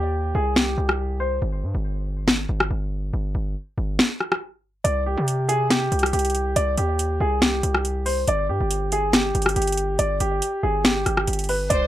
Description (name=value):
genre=hip hop, trap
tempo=140 BPM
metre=4/4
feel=half-time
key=C minor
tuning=A4 = 440 Hz
part: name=warm baby grand piano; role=melody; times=0.0-1.4, 4.8-11.9 s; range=G4 to D5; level=-24 LUFS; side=equal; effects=low-pass filter, tape echo
part: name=distorted 808-style bass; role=bass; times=0.0-11.9 s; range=G1 to C3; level=-24 LUFS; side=equal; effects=distortion
part: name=trap drum kit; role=drums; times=0.6-11.8 s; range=hi-hat, rim click, snare drum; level=-21 LUFS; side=equal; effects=overdrive
part: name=warm studio violin section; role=second line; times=11.7-11.9 s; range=C5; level=-25 LUFS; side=right 2 dB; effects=none
part: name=airy breathy pad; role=sustained chords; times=11.7-11.9 s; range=none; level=barely audible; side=none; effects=none
part: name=impact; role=sound effects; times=11.7-11.9 s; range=none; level=-33 LUFS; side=equal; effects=none
room=light reverb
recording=faint mains hum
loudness=-20 LUFS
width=side -13 dB against mid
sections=0.0-11.7 A section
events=break 0.0-4.8; kick muted 4.0-4.8; impact 11.7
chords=0.0 C5; 1.4 N.C.; 4.8 C5; 8.3 N.C.